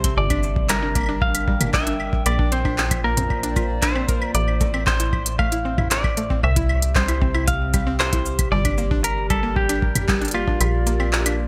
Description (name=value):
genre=IDM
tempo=115 BPM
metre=4/4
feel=straight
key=unclear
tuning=A4 = 440 Hz
part: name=semi-hollow electric guitar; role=melody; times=0.0-11.5 s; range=F4 to F5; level=-28 LUFS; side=equal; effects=warbly pitch drift, delay
part: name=warbly tape-like pad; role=sustained chords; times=0.0-11.5 s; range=A2 to G5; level=-32 LUFS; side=equal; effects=chorus, built-in reverb, vintage 12-bit sampler grit
part: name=mallet-like synth pluck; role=arpeggios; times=0.0-11.4 s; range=G3 to Bb4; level=-31 LUFS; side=equal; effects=chorus, cassette tape, digital delay
part: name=metallic FM bass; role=bass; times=0.0-11.5 s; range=G1 to C2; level=-27 LUFS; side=equal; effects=none
part: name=electronic kick drum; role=drums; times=0.0-10.6 s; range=none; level=-26 LUFS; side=equal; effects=overdrive
part: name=organic electronic drum kit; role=drums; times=0.0-11.4 s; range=cabasa, claves, handclaps, hi-hat, toms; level=-27 LUFS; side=equal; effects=overdrive, gated reverb
room=light reverb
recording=bright 1980s-style digital production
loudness=-21 LUFS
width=mono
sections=0.0-11.5 A section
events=kick drops out 10.6-11.5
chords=0.2 Gm; 2.3 Bbadd9; 4.3 Am; 6.4 C; 8.5 Gm; 10.6 Bbadd9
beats=| 0.17 0.69 1.22 1.74 | 2.26 2.78 3.30 3.82 | 4.35 4.87 5.39 5.91 | 6.43 6.96 7.48 8.00 | 8.52 9.04 9.56 10.09 | 10.61 11.13